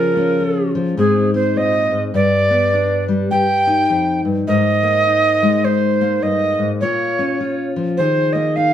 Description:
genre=acoustic folk duo or small band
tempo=103 BPM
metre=4/4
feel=swing 61% on 8ths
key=unclear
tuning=A4 = 440 Hz
part: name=alto recorder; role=second line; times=0.0-8.7 s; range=Ab4 to G5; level=-17 LUFS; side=right 2 dB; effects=none
part: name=fingerpicked steel-string acoustic guitar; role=accompaniment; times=0.0-8.7 s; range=F2 to Bb4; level=-18 LUFS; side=left 3 dB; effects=none
room=moderate large studio reverb, RT60 0.9 s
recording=band playing live in one room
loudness=-14 LUFS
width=side -10 dB against mid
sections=0.0-8.7 A section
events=recorder solo 0.0-8.7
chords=0.0 Db; 1.0 Ab; 2.1 G; 3.3 Ebadd9; 4.5 Abadd9; 6.8 Bbm; 8.0 Ebsus4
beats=0.39 0.97 1.55 | 2.14 2.72 3.30 3.89 | 4.47 5.05 5.64 6.22 | 6.81 7.39 7.97 8.56

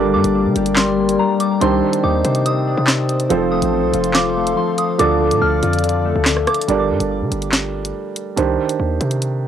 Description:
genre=hip hop, drill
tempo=142 BPM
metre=4/4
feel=half-time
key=G minor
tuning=A4 = 441 Hz
part: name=felt-muted upright piano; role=accompaniment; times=0.0-9.5 s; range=Eb3 to D5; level=-20 LUFS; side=right 8 dB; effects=low-pass filter
part: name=dark analog pad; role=sustained chords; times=0.0-6.7 s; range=A4 to D6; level=-25 LUFS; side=right 1 dB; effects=chorus
part: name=concert harp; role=arpeggios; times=0.0-9.4 s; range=D3 to C5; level=-21 LUFS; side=left 9 dB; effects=low-pass filter, tape echo
part: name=hard-hitting 808-style bass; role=bass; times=0.0-9.5 s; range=F1 to D3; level=-22 LUFS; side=equal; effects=none
part: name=soft synth bell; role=second line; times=0.1-6.7 s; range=Bb5 to F6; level=-24 LUFS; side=equal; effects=chorus, phaser, tape echo
part: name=drill drum kit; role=drums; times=0.2-9.3 s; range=handclaps, hi-hat, rim click, snare drum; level=-19 LUFS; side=equal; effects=cassette tape
room=light reverb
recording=home recording on cassette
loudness=-15 LUFS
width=side -9 dB against mid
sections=0.0-6.7 A section; 6.7-9.5 B section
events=none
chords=0.0 Gm; 1.6 Cmadd9; 3.3 F; 5.0 Dm; 6.7 Gm; 8.4 Cmadd9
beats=0.34 0.77 1.19 | 1.61 2.04 2.46 2.88 | 3.30 3.73 4.15 4.57 | 4.99 5.42 5.84 6.26 | 6.68 7.11 7.53 7.95 | 8.37 8.80 9.22

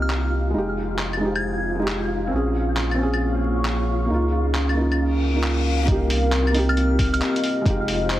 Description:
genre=future garage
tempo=135 BPM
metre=4/4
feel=swing 66% on 16ths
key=unclear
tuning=A4 = 440 Hz
part: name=soft synth bell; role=melody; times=0.0-1.7, 6.7-7.4 s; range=F6 to Ab6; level=-31 LUFS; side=equal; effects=chorus, analog delay
part: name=felt-muted upright piano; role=accompaniment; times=0.0-8.2 s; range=Ab3 to Ab4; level=-26 LUFS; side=right 1 dB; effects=sidechain pumping, analog delay
part: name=dark analog pad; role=sustained chords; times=0.0-8.2 s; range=Bb3 to Db6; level=-26 LUFS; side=equal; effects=lush chorus, sidechain pumping
part: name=warm sub bass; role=bass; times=0.0-8.2 s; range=F1 to Db2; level=-23 LUFS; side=equal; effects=tube saturation
part: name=flickering grainy texture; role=texture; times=0.0-8.2 s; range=F4 to F5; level=-32 LUFS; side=equal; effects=built-in reverb
part: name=lo-fi sampler-style drum kit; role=drums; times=0.1-8.2 s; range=claves, handclaps, hi-hat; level=-28 LUFS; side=left 1 dB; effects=none
part: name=reverse cymbal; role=sound effects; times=5.1-5.9 s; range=none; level=-32 LUFS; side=left 6 dB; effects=none
part: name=electronic kick drum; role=drums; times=5.9-7.8 s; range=none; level=-22 LUFS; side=equal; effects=none
room=moderate lush hall reverb, RT60 2.3 s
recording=heavily compressed radio sound, multiband compression, vinyl crackle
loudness=-19 LUFS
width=side -14 dB against mid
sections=0.0-5.9 A section; 5.9-8.2 B section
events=reverse cymbal 5.1-5.9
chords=0.0 Cm7; 0.5 Fm7; 2.3 Bbm7; 4.1 Db6; 5.9 Cm7; 7.7 Fm7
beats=0.10 | 0.55 0.99 1.43 1.88 | 2.32 2.77 3.21 3.66 | 4.10 4.54 4.99 5.43 | 5.88 6.32 6.77 7.21 | 7.66 8.10

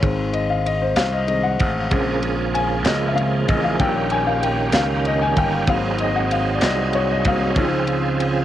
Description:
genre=slow gospel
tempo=64 BPM (dotted quarters)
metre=6/8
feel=straight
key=unclear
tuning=A4 = 440 Hz
part: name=clear upright piano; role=accompaniment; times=0.0-8.4 s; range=Db3 to Ab5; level=-22 LUFS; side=left 5 dB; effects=cassette tape
part: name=gritty slap bass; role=bass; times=0.0-8.4 s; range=G1 to Db2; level=-23 LUFS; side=right 1 dB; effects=overdrive
part: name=tight funk drum kit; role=drums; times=0.0-8.3 s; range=kick drum, ride cymbal, snare drum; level=-24 LUFS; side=right 1 dB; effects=none
part: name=group handclap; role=percussion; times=1.0-6.9 s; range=none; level=-30 LUFS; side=left 6 dB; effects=none
part: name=bright tonewheel organ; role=sustained chords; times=1.9-8.4 s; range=Db3 to Ab4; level=-23 LUFS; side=right 7 dB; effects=fast rotary speaker, overdrive, chorus vibrato, cassette tape
room=small room ambience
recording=home recording on cassette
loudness=-17 LUFS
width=side -12 dB against mid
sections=0.0-8.4 A section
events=upright piano solo 0.0-8.4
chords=0.0 Ab; 1.9 Bbm7; 3.8 Eb7/Bb; 5.7 Ab7; 7.6 Dbmaj7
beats=| 0.04 0.98 | 1.92 2.86 | 3.80 4.74 | 5.68 6.63 | 7.57

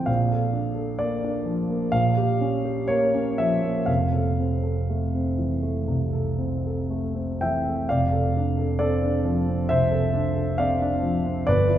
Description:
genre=classical, impressionist solo piano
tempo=59-69 BPM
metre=4/4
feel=rubato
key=F major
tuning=A4 = 440 Hz
part: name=warm grand piano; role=solo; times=0.0-11.8 s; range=F1 to C6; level=-21 LUFS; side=equal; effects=none
room=wet scoring stage reverb, RT60 2.0 s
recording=heard from further back in the room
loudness=-22 LUFS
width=side -11 dB against mid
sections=0.0-7.9 A section; 7.9-11.8 A section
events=none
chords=0.1 Bbmaj7; 1.9 Bbm6; 3.9 Fmaj7; 7.9 F6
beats=| 0.08 1.00 1.91 2.87 | 3.88 4.88 5.87 6.87 | 7.86 8.79 9.69 10.56 | 11.46

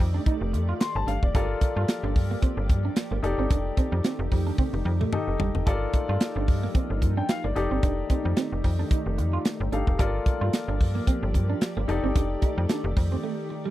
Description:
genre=early-eighties boogie funk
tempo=111 BPM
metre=4/4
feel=swing 56% on 16ths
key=unclear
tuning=A4 = 440 Hz
part: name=clear grand piano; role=accompaniment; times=0.0-13.7 s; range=Eb4 to C6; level=-32 LUFS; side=left 4 dB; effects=none
part: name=soft string machine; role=sustained chords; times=0.0-13.7 s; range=Eb3 to D5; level=-34 LUFS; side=left 1 dB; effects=ensemble chorus
part: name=slap-like FM bass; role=bass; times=0.0-13.2 s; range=F1 to G2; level=-26 LUFS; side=equal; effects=none
part: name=tight funk drum kit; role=drums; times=0.0-13.1 s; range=hi-hat, kick drum, snare drum, toms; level=-24 LUFS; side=equal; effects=none
part: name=electric guitar at the edge of break-up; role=riff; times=0.1-13.7 s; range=G3 to G4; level=-33 LUFS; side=right 7 dB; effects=analog chorus
room=little or no reverb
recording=dry, close 1970s-style studio recording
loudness=-23 LUFS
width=side -15 dB against mid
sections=0.0-13.7 A section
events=drum fill 4.6-5.7; break 13.2-13.7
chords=0.0 F13; 1.3 Gm7; 3.2 F13; 5.7 Gm7; 7.6 F13; 10.0 Gm7; 11.9 F13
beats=0.26 0.80 | 1.34 1.88 2.42 2.96 | 3.50 4.05 4.59 5.13 | 5.67 6.21 6.75 7.29 | 7.83 8.37 8.91 9.45 | 9.99 10.53 11.07 11.61 | 12.15 12.69 13.23

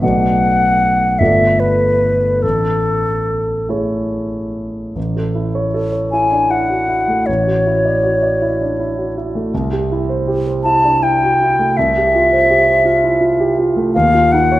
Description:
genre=classical, impressionist duo for flute and grand piano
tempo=46-56 BPM (dotted quarters)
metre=6/8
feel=rubato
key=unclear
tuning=A4 = 443 Hz
part: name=concert flute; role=melody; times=0.0-14.6 s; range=A4 to A5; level=-14 LUFS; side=left 1 dB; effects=none
part: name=warm concert grand piano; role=accompaniment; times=0.0-14.6 s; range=G1 to D5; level=-16 LUFS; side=right 1 dB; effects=none
room=wet recital hall reverb, RT60 1.4 s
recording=none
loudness=-13 LUFS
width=side -15 dB against mid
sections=0.0-5.0 A section; 5.0-14.6 B section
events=none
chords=0.0 Bm7; 1.2 G9; 2.4 Amaj7; 5.0 A6; 7.3 Dmaj9/A; 9.5 C; 11.8 Fmaj7sus2/C; 13.9 Ebmadd9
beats=| 0.02 1.20 | 2.43 3.69 | 4.96 6.13 | 7.28 8.41 | 9.52 10.63 | 11.76 12.84 | 13.94

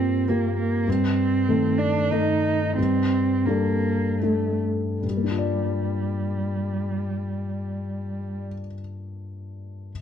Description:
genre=neoclassical piano and strings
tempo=72-102 BPM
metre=3/4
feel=rubato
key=G minor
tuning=A4 = 441 Hz
part: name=dark cello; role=second line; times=0.0-8.4 s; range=G3 to Eb4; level=-25 LUFS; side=right 4 dB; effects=none
part: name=dark baby grand piano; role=accompaniment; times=0.0-9.9 s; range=G2 to D5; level=-25 LUFS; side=left 3 dB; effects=none
room=moderate large studio reverb, RT60 1.5 s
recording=dark, warm production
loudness=-22 LUFS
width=side -8 dB against mid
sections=0.0-5.0 A section; 5.0-9.9 B section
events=slowing down 0.0-5.0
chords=0.0 Gm7; 0.9 Adim/G; 2.8 Dsus4/G; 5.0 Gm7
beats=0.28 | 0.87 1.47 2.11 | 2.77 3.46 4.21 | 5.03 5.84 6.65 | 7.46 8.27 9.08

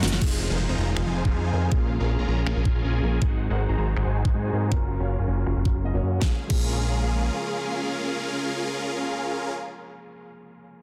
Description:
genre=future bass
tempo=160 BPM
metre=4/4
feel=half-time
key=Bb minor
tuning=A4 = 440 Hz
part: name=rich symphonic string section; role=sustained chords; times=0.0-9.2 s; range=C3 to Ab4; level=-39 LUFS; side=equal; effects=sidechain pumping, low-pass filter
part: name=supersaw chords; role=riff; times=0.0-9.5 s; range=Db4 to Bb5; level=-32 LUFS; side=equal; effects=phaser, sidechain pumping, low-pass filter, dub echo
part: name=fat analog bass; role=bass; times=0.0-7.3 s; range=F1 to Ab2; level=-27 LUFS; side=equal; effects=sidechain pumping
part: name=pop drum kit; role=drums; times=0.0-6.6 s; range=crash cymbal, finger snaps, hi-hat, snare drum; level=-33 LUFS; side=equal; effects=low-pass filter on hats, small room ambience, low-pass filter on cymbals, low-pass filter on perc, soft clipping on snare, low-pass filter on snare
part: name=dark concert grand piano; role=accompaniment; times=0.2-10.8 s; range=F3 to Eb5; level=-38 LUFS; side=equal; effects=sidechain pumping, dub echo
part: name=electronic kick drum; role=drums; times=0.2-6.6 s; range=none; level=-26 LUFS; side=equal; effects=small room ambience
part: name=downlifter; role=sound effects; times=0.2-3.2 s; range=none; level=-39 LUFS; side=equal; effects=none
room=light reverb, digital ambience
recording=dense, heavily limited modern master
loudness=-25 LUFS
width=mono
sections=0.2-6.2 A section; 6.2-9.2 B section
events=drum fill 0.0; filter sweep on drum 0.2-6.2; filter sweep on analog synth bass 0.2-6.2; filter sweep on supersaw synth 0.2-6.2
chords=0.2 Fm7; 1.7 Bbm7; 3.2 Ab7; 4.7 Gbmaj7; 6.2 Bbm7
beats=| 0.22 0.59 0.97 1.34 | 1.72 2.09 2.47 2.84 | 3.22 3.59 3.97 4.34 | 4.72 5.09 5.47 5.84 | 6.22 6.59 6.97 7.34 | 7.72 8.09 8.47 8.84

